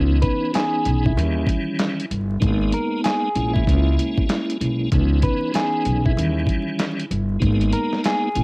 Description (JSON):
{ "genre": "hip hop, boom-bap hip-hop", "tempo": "96 BPM", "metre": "4/4", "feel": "swing 63% on 16ths", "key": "G# harmonic minor", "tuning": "A4 = 440 Hz", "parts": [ { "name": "tonewheel organ", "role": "accompaniment", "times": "0.0-8.4 s", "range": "D#3 to E4", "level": "-23 LUFS", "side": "equal", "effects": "overdrive, chorus vibrato, fast rotary speaker, cassette tape, high-pass filter, low-pass filter" }, { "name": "upright bass", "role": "bass", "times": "0.0-8.4 s", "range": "G1 to D#2", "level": "-20 LUFS", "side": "equal", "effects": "none" }, { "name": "clean electric guitar", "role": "melody", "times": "0.2-8.4 s", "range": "E4 to B4", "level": "-26 LUFS", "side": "equal", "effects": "high-pass filter, low-pass filter" }, { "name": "dusty soul sampler-style drum kit", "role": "drums", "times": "0.2-8.4 s", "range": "handclaps, hi-hat, kick drum, snare drum", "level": "-22 LUFS", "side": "equal", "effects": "cassette tape" } ], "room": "little or no reverb", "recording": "home recording on cassette, vinyl crackle", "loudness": "-18 LUFS", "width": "side -28 dB against mid", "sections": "0.0-8.4 A section", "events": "none", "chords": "0.0 C#m9; 1.2 D#7b9; 2.4 G#madd9; 3.4 A#m7b5; 4.9 C#m9; 6.2 D#7b9; 7.4 G#madd9" }